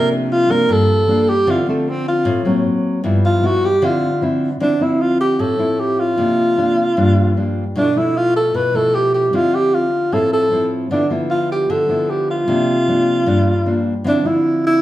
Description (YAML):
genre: bossa nova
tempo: 153 BPM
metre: 4/4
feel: straight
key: D minor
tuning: A4 = 439 Hz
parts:
  - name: breathy alto saxophone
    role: melody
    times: 0.0-14.8 s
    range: A3 to B4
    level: -16 LUFS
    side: equal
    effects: none
  - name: nylon-string guitar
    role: accompaniment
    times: 0.0-14.8 s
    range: G2 to E4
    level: -18 LUFS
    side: left 1 dB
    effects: none
room: wet large studio reverb, RT60 0.9 s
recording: band playing live in one room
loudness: -14 LUFS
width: side -14 dB against mid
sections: 0.0-4.6 A section; 4.6-14.8 B section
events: alto saxophone solo 0.0-4.6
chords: 0.0 C9sus4; 1.5 Dm7; 2.6 F#; 3.0 G6; 3.8 Dm9; 6.2 C9sus4; 7.8 G13/B; 9.3 Dm9; 10.9 Dm69; 12.5 C9sus4; 14.1 Dm9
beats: 0.29 0.68 1.07 | 1.47 1.86 2.25 2.65 | 3.04 3.43 3.83 4.22 | 4.61 5.00 5.40 5.79 | 6.18 6.58 6.97 7.36 | 7.76 8.15 8.54 8.94 | 9.33 9.72 10.12 10.51 | 10.90 11.30 11.69 12.08 | 12.48 12.87 13.27 13.66 | 14.05 14.45